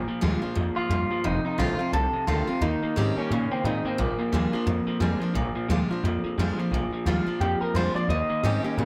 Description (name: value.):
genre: rock.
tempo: 175 BPM.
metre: 4/4.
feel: swing 60% on 8ths.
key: Bb mixolydian.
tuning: A4 = 441 Hz.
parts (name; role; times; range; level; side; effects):
picked steel-string acoustic guitar; accompaniment; 0.0-8.8 s; F2 to G4; -33 LUFS; equal; none.
electric guitar through a small old amp; riff; 0.0-8.8 s; F2 to C4; -32 LUFS; equal; none.
upright bass; bass; 0.0-8.8 s; F1 to Bb2; -30 LUFS; equal; none.
electric guitar through a small old amp; melody; 0.8-8.8 s; Bb3 to Eb5; -31 LUFS; equal; spring reverb, plate reverb, tape echo.
room: moderate studio ambience, RT60 0.5 s.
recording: none.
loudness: -26 LUFS.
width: mono.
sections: 0.0-6.7 A section; 6.7-8.8 B section.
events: clean electric guitar solo 6.7-8.8.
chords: 0.0 Bb7; 1.2 F7; 2.6 Eb7; 4.0 Bb7; 8.1 Eb7.